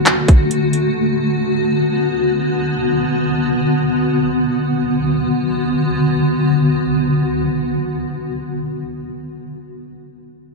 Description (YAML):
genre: hip hop, trap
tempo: free time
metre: none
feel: none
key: B minor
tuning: A4 = 441 Hz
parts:
  - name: granular cloud pad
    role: sustained chords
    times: 0.0-8.8 s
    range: D3 to F#4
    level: -16 LUFS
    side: left 1 dB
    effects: built-in reverb
  - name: trap drum kit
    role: drums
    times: 0.1-0.8 s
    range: handclaps, hi-hat, kick drum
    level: -12 LUFS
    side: equal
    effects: overdrive
room: wet recital hall reverb, RT60 1.4 s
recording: dark, warm production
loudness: -15 LUFS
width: side -2 dB against mid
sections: 0.0-4.5 A section; 4.5-8.1 B section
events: none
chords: 0.0 Bm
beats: free time